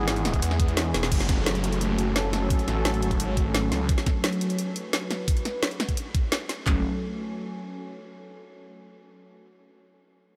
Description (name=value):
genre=dark technical drum and bass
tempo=173 BPM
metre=4/4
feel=straight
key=F# minor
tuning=A4 = 438 Hz
part: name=sweeping resonant pad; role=sustained chords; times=0.0-6.8 s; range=E3 to B4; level=-33 LUFS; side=equal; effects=chorus, sidechain pumping
part: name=snarling distorted saw bass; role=bass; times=0.0-3.9, 6.7-6.8 s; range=E1 to E2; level=-30 LUFS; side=equal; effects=distortion, tube saturation
part: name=warbly tape-like pad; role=texture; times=0.0-8.0 s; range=E4 to G#5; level=-42 LUFS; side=equal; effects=chorus, built-in reverb, sidechain pumping
part: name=drum and bass drum kit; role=drums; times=0.1-6.6 s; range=crash cymbal, hi-hat, snare drum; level=-32 LUFS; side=equal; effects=overdrive
part: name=drum and bass drum kit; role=drums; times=0.3-6.7 s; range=handclaps, kick drum, toms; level=-27 LUFS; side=equal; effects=none
part: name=downlifter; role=sound effects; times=1.1-3.9 s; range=none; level=-40 LUFS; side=equal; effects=none
room=moderate huge ambient reverb, RT60 7.8 s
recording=dreamy mix soaked in reverb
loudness=-26 LUFS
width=mono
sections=0.0-1.1 A section; 1.1-6.7 B section; 6.7-8.1 C section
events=drop 0.0-1.1; drum fill 0.9; filter sweep on analog synth pad 1.1-6.7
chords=0.0 E; 1.1 F#m